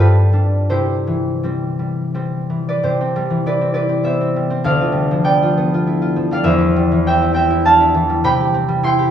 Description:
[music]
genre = classical, solo harp piece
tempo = 80-105 BPM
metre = 3/4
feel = rubato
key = C major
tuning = A4 = 439 Hz
[part]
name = concert harp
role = solo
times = 0.0-9.1 s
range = D2 to C6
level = -14 LUFS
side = equal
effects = none
[sound]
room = moderate recital hall reverb, RT60 1.8 s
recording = studio ambience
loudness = -14 LUFS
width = side -9 dB against mid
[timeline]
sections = 0.0-2.8 A section; 2.8-9.1 B section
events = none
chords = 0.0 G7; 0.7 C; 4.7 G7/D; 6.5 C/E; 8.2 C

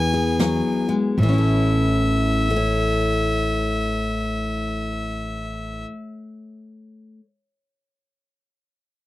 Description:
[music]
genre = honky-tonk and classic country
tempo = 74 BPM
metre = 3/4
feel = swing 65% on 8ths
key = A major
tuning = A4 = 436 Hz
[part]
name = bright fiddle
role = melody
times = 0.0-5.8 s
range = E5 to G#5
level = -26 LUFS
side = left 1 dB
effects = none
[part]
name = picked steel-string acoustic guitar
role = accompaniment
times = 0.0-7.3 s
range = A2 to C#5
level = -23 LUFS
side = left 2 dB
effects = none
[part]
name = upright bass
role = bass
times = 0.0-5.8 s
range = A1 to E2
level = -25 LUFS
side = right 1 dB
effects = none
[part]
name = soft brush drum kit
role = drums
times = 0.4-0.6 s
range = hi-hat, snare drum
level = -21 LUFS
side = right 2 dB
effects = none
[sound]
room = little or no reverb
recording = dry, close 1970s-style studio recording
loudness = -19 LUFS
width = side -16 dB against mid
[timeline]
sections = 0.0-1.2 A section; 1.2-6.0 B section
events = slowing down 0.0-1.2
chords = 0.0 E; 1.2 A

